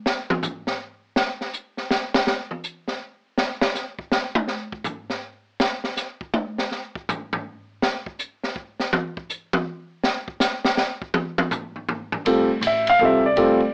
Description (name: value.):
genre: modal jazz.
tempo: 162 BPM.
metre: 3/4.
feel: swing 66% on 8ths.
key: D minor.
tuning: A4 = 442 Hz.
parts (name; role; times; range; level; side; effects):
open jazz drum kit; drums; 0.1-13.7 s; hi-hat, kick drum, ride cymbal, snare drum, toms; -26 LUFS; equal; none.
upright bass; bass; 12.2-13.7 s; A1 to D2; -32 LUFS; equal; none.
warm grand piano; accompaniment; 12.3-13.7 s; G3 to F5; -19 LUFS; equal; none.
room: light reverb.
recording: AM radio sound.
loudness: -24 LUFS.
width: mono.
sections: 0.0-12.3 A section; 12.3-13.7 A section.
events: drum solo 0.0-12.3.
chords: 0.0 N.C.; 12.3 Dm9.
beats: | 0.06 0.43 0.80 | 1.17 1.54 1.91 | 2.28 2.65 3.01 | 3.38 3.75 4.12 | 4.49 4.86 5.23 | 5.60 5.97 6.34 | 6.71 7.08 7.45 | 7.82 8.19 8.56 | 8.93 9.30 9.67 | 10.04 10.40 10.78 | 11.14 11.51 11.88 | 12.25 12.62 12.99 | 13.36.